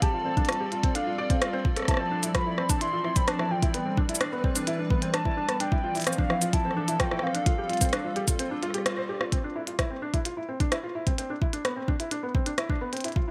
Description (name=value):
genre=IDM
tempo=129 BPM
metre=4/4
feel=straight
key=D dorian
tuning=A4 = 442 Hz
part: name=warbly nostalgic lead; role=melody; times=0.0-8.9 s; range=F5 to C6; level=-34 LUFS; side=equal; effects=chorus, cassette tape, tape echo
part: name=hollow soft pad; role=sustained chords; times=0.0-9.3 s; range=E3 to D5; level=-36 LUFS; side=equal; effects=ensemble chorus
part: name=felt-muted upright piano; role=arpeggios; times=0.0-13.3 s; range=B3 to D5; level=-34 LUFS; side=equal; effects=vintage 12-bit sampler grit, low-pass filter, digital delay
part: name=electronic kick drum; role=drums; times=0.0-13.3 s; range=none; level=-29 LUFS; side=equal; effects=small room ambience
part: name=glitchy drum kit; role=drums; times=0.0-13.2 s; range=cabasa, hi-hat, rim click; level=-33 LUFS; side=equal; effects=small room ambience
room=light reverb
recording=none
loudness=-27 LUFS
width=mono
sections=0.0-9.3 A section; 9.3-13.3 B section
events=break 8.4-9.3; band accent 8.9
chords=0.0 G9sus4; 1.9 Dm9; 3.7 Cmaj9; 5.6 Dm9; 7.5 G9sus4; 9.3 Dm9; 11.2 Cmaj9